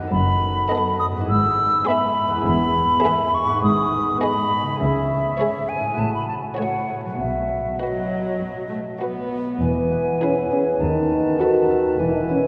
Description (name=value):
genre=cinematic, playful, whimsical film cue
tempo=102 BPM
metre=4/4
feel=straight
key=E major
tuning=A4 = 440 Hz
part: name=concert harp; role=arpeggios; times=0.0-12.5 s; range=E2 to A4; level=-30 LUFS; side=equal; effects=none
part: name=hollow concert flute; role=second line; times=0.1-12.5 s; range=D#5 to E6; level=-25 LUFS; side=equal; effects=none
part: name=dark chamber cello section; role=bass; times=0.1-12.5 s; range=D#2 to C#3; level=-31 LUFS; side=equal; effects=none
part: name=dark chamber double bass section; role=bass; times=0.1-12.4 s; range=E1 to D#2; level=-32 LUFS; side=equal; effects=none
part: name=warm chamber violin section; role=melody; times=0.7-11.8 s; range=B4 to E5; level=-35 LUFS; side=equal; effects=none
part: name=warm chamber violin section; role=second line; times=0.7-11.8 s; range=F#4 to A4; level=-34 LUFS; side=equal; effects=none
part: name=dark chamber viola section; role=accompaniment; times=0.7-11.8 s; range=F#3 to F#4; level=-33 LUFS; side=equal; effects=none
part: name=dark clarinet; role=second line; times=9.6-12.5 s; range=B4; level=-27 LUFS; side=equal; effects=none
part: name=mellow bassoon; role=accompaniment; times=9.6-12.5 s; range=D#3 to E3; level=-27 LUFS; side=equal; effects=none
part: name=mellow French horn section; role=sustained chords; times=10.2-12.4 s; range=B3 to F#4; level=-23 LUFS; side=equal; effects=none
room=wet cathedral reverb, RT60 5.0 s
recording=none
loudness=-21 LUFS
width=mono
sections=0.0-9.6 A section; 9.6-12.5 B section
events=none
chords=0.1 B7/F#; 1.3 E/G#; 2.5 E; 3.6 G#m; 4.8 C#m; 6.0 F#m/A; 7.2 B; 9.6 E; 10.8 B7/D#